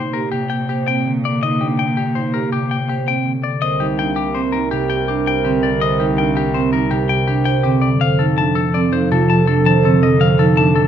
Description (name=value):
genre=classical, minimalist pattern music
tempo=164 BPM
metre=6/4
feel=straight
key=unclear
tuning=A4 = 440 Hz
part: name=semi-hollow electric guitar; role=melody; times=0.0-10.9 s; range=G4 to A5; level=-21 LUFS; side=left 9 dB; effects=none
part: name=concert harp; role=accompaniment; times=0.0-10.9 s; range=C3 to C4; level=-19 LUFS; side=left 1 dB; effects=none
part: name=vibraphone with soft mallets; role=arpeggios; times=0.0-10.8 s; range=C4 to C5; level=-21 LUFS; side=right 6 dB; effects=none
part: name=warm cello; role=bass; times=0.0-10.9 s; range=C2 to Bb2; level=-23 LUFS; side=right 3 dB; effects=none
part: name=mellow hollow wooden-headed alto flute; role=second line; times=3.6-10.9 s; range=A4 to Bb4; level=-22 LUFS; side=right 5 dB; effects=none
room=moderate large studio reverb, RT60 1.2 s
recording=close, detailed microphones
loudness=-14 LUFS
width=side -9 dB against mid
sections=0.0-3.6 A section; 3.6-10.9 B section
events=none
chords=0.0 Ebmaj7/Bb; 3.6 Cm7; 8.0 F7